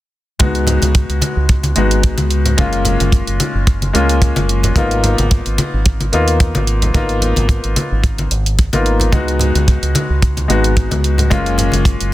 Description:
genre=nu-disco, nu disco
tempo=110 BPM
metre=4/4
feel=swing 54% on 16ths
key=unclear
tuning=A4 = 440 Hz
part: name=warm baby grand piano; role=accompaniment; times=0.4-12.1 s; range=G#3 to F#4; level=-18 LUFS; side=left 2 dB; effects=sidechain pumping, tape echo
part: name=fingered electric bass with an envelope filter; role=bass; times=0.4-12.1 s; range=F#1 to D#2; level=-17 LUFS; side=equal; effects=tube saturation
part: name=electronic hi-hat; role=drums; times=0.4-12.1 s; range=none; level=-22 LUFS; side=right 2 dB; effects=overdrive
part: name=kick drum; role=drums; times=0.4-12.0 s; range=none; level=-13 LUFS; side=equal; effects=none
part: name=congas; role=percussion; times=0.4-11.8 s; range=none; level=-21 LUFS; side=left 1 dB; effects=none
room=light reverb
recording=dense, heavily limited modern master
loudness=-12 LUFS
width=side -15 dB against mid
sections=0.4-12.1 A section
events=none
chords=0.4 C#7sus4; 2.6 F#maj7; 4.8 G#m69; 9.1 C#7sus4; 11.3 F#maj7

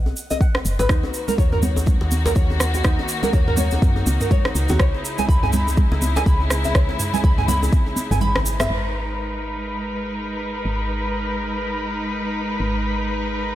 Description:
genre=afro house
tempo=123 BPM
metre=4/4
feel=swing 59% on 16ths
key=G# minor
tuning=A4 = 441 Hz
part: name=woody FM bass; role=bass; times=0.0-13.6 s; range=F#1 to F#2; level=-23 LUFS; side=equal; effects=tube saturation, sidechain pumping
part: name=djembe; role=percussion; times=0.1-8.7 s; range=none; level=-30 LUFS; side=left 2 dB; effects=none
part: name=cabasa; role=percussion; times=0.2-8.7 s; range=none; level=-30 LUFS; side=right 3 dB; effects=none
part: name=nylon-string guitar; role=arpeggios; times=0.3-8.7 s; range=D#4 to B5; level=-26 LUFS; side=right 1 dB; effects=sidechain pumping, low-pass filter, dub echo
part: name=electronic kick drum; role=drums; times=0.4-7.8 s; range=none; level=-18 LUFS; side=equal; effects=none
part: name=afro-pop drum kit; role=drums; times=0.5-8.7 s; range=rim click, toms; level=-26 LUFS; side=right 1 dB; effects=none
part: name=rich studio string section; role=sustained chords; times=0.9-13.6 s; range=C#3 to B4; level=-26 LUFS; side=left 1 dB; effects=sidechain pumping, low-pass filter
part: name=congas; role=percussion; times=1.3-8.7 s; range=none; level=-27 LUFS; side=right 3 dB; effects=none
room=light reverb, studio reverb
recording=none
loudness=-18 LUFS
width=side -13 dB against mid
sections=0.0-8.7 A section; 8.7-13.6 B section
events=kick drops out 8.2-8.7; drum fill 8.2-8.7; band accent 8.6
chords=0.0 G#m; 0.9 D#m7; 4.8 C#m7; 8.7 G#m

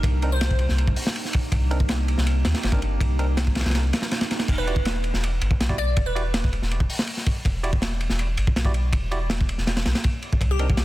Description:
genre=drum and bass, jungle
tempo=162 BPM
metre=4/4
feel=straight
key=unclear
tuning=A4 = 439 Hz
part: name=warbly tape-like pad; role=sustained chords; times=0.0-4.5 s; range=Bb3 to G4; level=-34 LUFS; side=right 3 dB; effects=chorus, built-in reverb
part: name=soft dub sub bass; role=bass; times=0.0-10.8 s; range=E1 to Eb2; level=-24 LUFS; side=equal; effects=none
part: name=crunchy breakbeat drum kit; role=drums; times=0.0-10.8 s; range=crash cymbal, hi-hat, kick drum, ride cymbal, snare drum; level=-23 LUFS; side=equal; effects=none
part: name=barky tine electric piano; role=stabs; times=0.2-10.7 s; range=C4 to D5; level=-35 LUFS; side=right 2 dB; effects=dub echo
part: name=glassy wavetable pluck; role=melody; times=0.3-0.7, 4.6-6.3, 10.5-10.7 s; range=G4 to D5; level=-31 LUFS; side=equal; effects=chorus, dub echo
room=small room ambience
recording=dense, heavily limited modern master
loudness=-21 LUFS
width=side -16 dB against mid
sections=0.0-4.5 A section; 4.5-10.8 A section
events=drop 0.0-4.5, 4.5-10.8; kick drops out 3.7-4.5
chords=0.0 Cm9; 4.5 E5

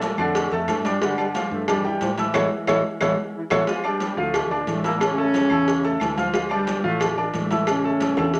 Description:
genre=latin, salsa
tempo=180 BPM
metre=4/4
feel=straight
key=D harmonic minor from 3.7 s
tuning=A4 = 442 Hz
part: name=warm trombone section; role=melody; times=0.0-8.4 s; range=G2 to F4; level=-28 LUFS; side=equal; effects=none
part: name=warm grand piano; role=accompaniment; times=0.0-8.4 s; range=D3 to F6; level=-28 LUFS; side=equal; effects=none
part: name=fingered electric bass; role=bass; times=0.0-8.4 s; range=A1 to A2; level=-33 LUFS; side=equal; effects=none
part: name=agogo bells and timbales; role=percussion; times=0.0-8.3 s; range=none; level=-32 LUFS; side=equal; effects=none
part: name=congas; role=percussion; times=0.0-8.4 s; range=none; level=-33 LUFS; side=equal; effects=none
part: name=cowbell and bongos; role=percussion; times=0.0-8.4 s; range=none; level=-30 LUFS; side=equal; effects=none
part: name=claves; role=percussion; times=0.2-8.3 s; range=none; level=-36 LUFS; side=equal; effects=none
room=wet studio reverb, RT60 0.6 s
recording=none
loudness=-22 LUFS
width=mono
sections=0.0-3.7 A section; 3.7-8.4 B section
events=band accent 2.3-3.7; drum fill 2.7-3.7, 8.2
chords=0.0 Bbmaj7; 1.0 G5; 2.3 A; 3.7 Dm; 7.7 A

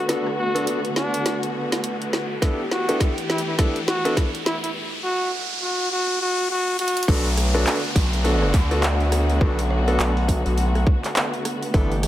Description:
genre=glitch hop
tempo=103 BPM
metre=4/4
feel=swing 60% on 16ths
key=B minor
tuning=A4 = 436 Hz
part: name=breathy trumpet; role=melody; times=0.0-7.1 s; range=D4 to F#4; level=-26 LUFS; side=equal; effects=low-pass filter, dub echo
part: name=dark symphonic string section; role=sustained chords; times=0.0-12.1 s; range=D3 to G4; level=-28 LUFS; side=equal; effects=sidechain pumping
part: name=riser and downlifter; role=sound effects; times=0.3-11.7 s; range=none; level=-30 LUFS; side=equal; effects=none
part: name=bright concert grand piano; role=stabs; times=0.1-11.9 s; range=B3 to A4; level=-27 LUFS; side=equal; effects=sidechain pumping, dub echo
part: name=drum and bass drum kit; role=drums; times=0.1-12.1 s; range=crash cymbal, handclaps, hi-hat, rim click, snare drum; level=-27 LUFS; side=equal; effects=none
part: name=electronic kick drum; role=drums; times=2.4-11.9 s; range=none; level=-20 LUFS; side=equal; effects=none
part: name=gritty driven synth bass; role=bass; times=7.1-12.1 s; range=G1 to D2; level=-21 LUFS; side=equal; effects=overdrive
room=light reverb, digital ambience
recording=none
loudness=-19 LUFS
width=side -13 dB against mid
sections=0.0-7.1 A section; 7.1-12.1 B section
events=build-up 0.0-7.1; drum fill 0.0-4.8, 6.8; riser 0.3-7.1; drop 7.1-12.1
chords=0.0 Bm7; 2.4 G69; 7.1 Bm7

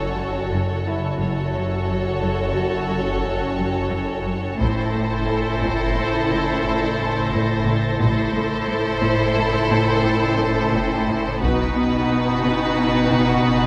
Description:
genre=cinematic, suspense film score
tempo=88 BPM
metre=5/4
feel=straight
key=unclear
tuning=A4 = 440 Hz
part: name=rich studio violin section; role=melody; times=0.0-13.7 s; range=B4 to C#5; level=-30 LUFS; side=equal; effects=none
part: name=warm symphonic violin section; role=second line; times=0.0-13.7 s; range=F#4 to A4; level=-29 LUFS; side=equal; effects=none
part: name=warm symphonic viola section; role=accompaniment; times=0.0-13.7 s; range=D#4 to F#4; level=-28 LUFS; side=equal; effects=none
part: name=rich symphonic cello section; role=riff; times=0.0-13.7 s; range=F#2 to B3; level=-29 LUFS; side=equal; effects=none
part: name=rich symphonic cello section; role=bass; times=0.0-13.7 s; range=F#2 to B2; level=-27 LUFS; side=equal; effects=none
part: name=swarming drone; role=drone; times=0.0-13.7 s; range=F#1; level=-30 LUFS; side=equal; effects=built-in reverb
part: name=bright baby grand piano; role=texture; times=0.0-11.5 s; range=E4 to A5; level=-37 LUFS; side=equal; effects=none
part: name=rich symphonic double bass section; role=bass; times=1.2-12.1 s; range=F#1 to B1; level=-30 LUFS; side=equal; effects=none
part: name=taiko ensemble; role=drums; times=4.6-6.0, 11.4-12.8 s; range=none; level=-31 LUFS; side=equal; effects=none
part: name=warm symphonic violin section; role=texture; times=4.6-13.7 s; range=B5 to A#6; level=-36 LUFS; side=equal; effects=none
room=moderate scoring stage reverb, RT60 1.8 s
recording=none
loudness=-21 LUFS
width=mono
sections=0.0-13.7 A section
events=none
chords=0.0 F#m; 4.6 Am; 11.4 B/F#

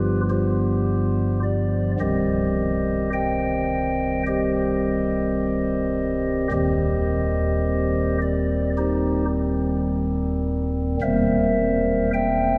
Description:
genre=classical, chorale-style piece for pipe organ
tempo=53 BPM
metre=4/4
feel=rubato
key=C minor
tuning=A4 = 441 Hz
part: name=chamber organ, stopped flute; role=solo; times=0.0-12.6 s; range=C1 to G5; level=-22 LUFS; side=equal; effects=none
room=wet cathedral reverb, RT60 4.1 s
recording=none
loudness=-23 LUFS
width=mono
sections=0.0-12.6 A section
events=none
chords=0.0 G7; 2.0 Cm; 6.5 Cm/Eb; 11.0 C7/E

